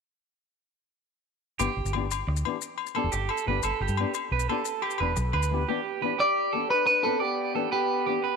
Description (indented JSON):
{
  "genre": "highlife guitar band",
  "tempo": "118 BPM (dotted quarters)",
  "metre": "12/8",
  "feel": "straight",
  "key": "G major",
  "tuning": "A4 = 440 Hz",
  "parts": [
    { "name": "flamenco guitar", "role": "accompaniment", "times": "1.6-8.2 s", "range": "E3 to G4", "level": "-34 LUFS", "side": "left 12 dB", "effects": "none" },
    { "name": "electric guitar at the edge of break-up", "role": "arpeggios", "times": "1.6-8.4 s", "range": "G4 to D5", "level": "-30 LUFS", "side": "right 12 dB", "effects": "spring reverb, tape echo" },
    { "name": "deep dub fingered electric bass", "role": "bass", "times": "1.6-5.6 s", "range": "E1 to G2", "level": "-28 LUFS", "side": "equal", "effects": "none" },
    { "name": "agogo bells", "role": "percussion", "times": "1.6-5.5 s", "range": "none", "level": "-34 LUFS", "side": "left 16 dB", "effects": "none" },
    { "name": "maracas", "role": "percussion", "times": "1.6-5.5 s", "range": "none", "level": "-37 LUFS", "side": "left 17 dB", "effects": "none" },
    { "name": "clean electric guitar", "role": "melody", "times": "6.2-8.4 s", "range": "G4 to D5", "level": "-24 LUFS", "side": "left 1 dB", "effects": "none" },
    { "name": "warm alto saxophone", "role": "second line", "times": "6.2-8.4 s", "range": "B3 to G4", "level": "-36 LUFS", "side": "left 14 dB", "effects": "none" }
  ],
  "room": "light reverb, small room ambience",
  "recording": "1960s-style stereo with parts hard left and right",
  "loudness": "-24 LUFS",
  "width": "side -5 dB against mid",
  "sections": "1.6-5.7 A section; 5.7-8.4 B section",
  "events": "none",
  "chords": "1.6 G6"
}